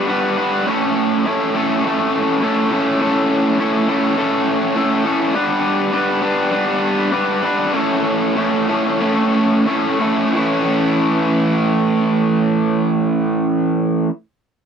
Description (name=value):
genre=rock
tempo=87-103 BPM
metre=4/4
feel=straight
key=A mixolydian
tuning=A4 = 440 Hz
part: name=raw garage guitar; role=solo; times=0.0-14.1 s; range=A2 to B4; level=-15 LUFS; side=equal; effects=overdrive
room=little or no reverb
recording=dry, close 1970s-style studio recording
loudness=-15 LUFS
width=side -7 dB against mid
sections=0.0-10.3 A section; 10.3-13.1 B section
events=slowing down 5.3-10.3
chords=0.0 G; 0.7 A; 5.3 G; 7.7 A